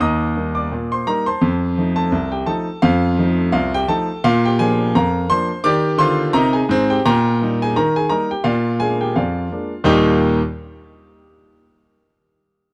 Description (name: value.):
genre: ragtime piano.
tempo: 85 BPM.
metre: 2/4.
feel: swing 55% on 16ths.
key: Eb major.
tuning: A4 = 443 Hz.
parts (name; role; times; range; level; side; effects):
warm baby grand piano; solo; 0.0-10.4 s; C2 to Eb6; -18 LUFS; equal; none.
room: little or no reverb.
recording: close, detailed microphones.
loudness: -18 LUFS.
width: mono.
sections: 0.0-9.9 A section; 9.9-11.3 B section.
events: none.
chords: 0.0 Eb; 1.4 F7; 4.2 Bb7; 5.6 Eb; 7.0 Eb/Bb; 8.5 Bb7; 9.9 Eb.